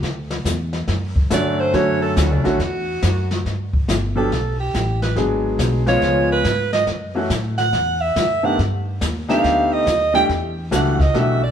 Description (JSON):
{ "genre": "jazz, small-group swing and bop", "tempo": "140 BPM", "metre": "4/4", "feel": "swing 65% on 8ths", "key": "D major", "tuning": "A4 = 440 Hz", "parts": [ { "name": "upright bass", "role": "bass", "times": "0.0-11.5 s", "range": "G1 to A2", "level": "-22 LUFS", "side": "equal", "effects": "none" }, { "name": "jazz brush drum kit", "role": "drums", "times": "0.0-11.5 s", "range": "brushed snare drum, hi-hat, kick drum, snare drum", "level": "-23 LUFS", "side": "left 1 dB", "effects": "none" }, { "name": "bright alto saxophone", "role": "second line", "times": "1.3-11.5 s", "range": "D4 to G5", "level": "-20 LUFS", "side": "right 3 dB", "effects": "none" }, { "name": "clear concert grand piano", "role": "accompaniment", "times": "1.3-11.4 s", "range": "D3 to G#4", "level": "-20 LUFS", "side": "left 1 dB", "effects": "none" } ], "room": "wet stone room reverb, RT60 1.3 s", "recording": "band playing live in one room", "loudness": "-17 LUFS", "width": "side -8 dB against mid", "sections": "0.0-3.4 A section; 3.4-11.5 A section", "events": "alto saxophone solo 0.0-11.5", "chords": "0.0 Dmaj7; 3.4 G; 5.2 G#m7b5; 6.0 C#7; 6.9 F#m7; 8.6 B7alt; 10.3 Em11" }